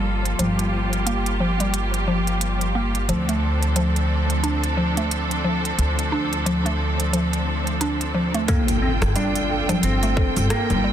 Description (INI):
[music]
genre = organic downtempo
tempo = 89 BPM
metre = 4/4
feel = swing 59% on 16ths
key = G minor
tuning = A4 = 440 Hz
[part]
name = bright symphonic string section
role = sustained chords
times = 0.0-10.9 s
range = F3 to G5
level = -26 LUFS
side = right 2 dB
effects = sidechain pumping, low-pass filter
[part]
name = mallet-like synth pluck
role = arpeggios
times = 0.0-10.9 s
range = F3 to A4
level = -25 LUFS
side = equal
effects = chorus, cassette tape, digital delay
[part]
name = upright bass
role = bass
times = 0.0-10.9 s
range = G1 to D2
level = -24 LUFS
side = equal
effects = none
[part]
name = organic electronic drum kit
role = drums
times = 0.3-10.8 s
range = cabasa, congas, hi-hat, rim click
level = -28 LUFS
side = right 1 dB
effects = overdrive
[part]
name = clean lap steel guitar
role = melody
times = 8.5-10.9 s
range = Bb3 to D4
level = -25 LUFS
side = left 1 dB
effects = digital delay
[part]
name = electronic kick drum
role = drums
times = 8.5-10.3 s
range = none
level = -22 LUFS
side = equal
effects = overdrive
[part]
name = impact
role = sound effects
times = 8.5-10.9 s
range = none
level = -27 LUFS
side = equal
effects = none
[sound]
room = light reverb, digital ambience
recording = dense, heavily limited modern master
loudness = -19 LUFS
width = side -10 dB against mid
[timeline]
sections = 0.0-8.5 A section; 8.5-10.9 B section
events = impact 8.5-10.9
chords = 0.0 Gm7; 3.1 Dm7; 8.5 Gm9